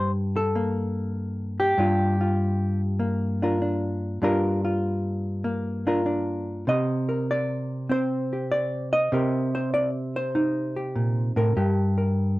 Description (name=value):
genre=solo jazz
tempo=98 BPM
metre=4/4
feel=swing 67% on 8ths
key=G minor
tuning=A4 = 440 Hz
part: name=hollow-body jazz guitar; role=solo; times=0.0-12.4 s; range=G2 to Eb5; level=-23 LUFS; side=equal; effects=none
room=light reverb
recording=none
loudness=-23 LUFS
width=side -18 dB against mid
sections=0.0-12.4 A section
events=none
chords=0.0 Gm7; 6.7 Cm7; 11.6 Gm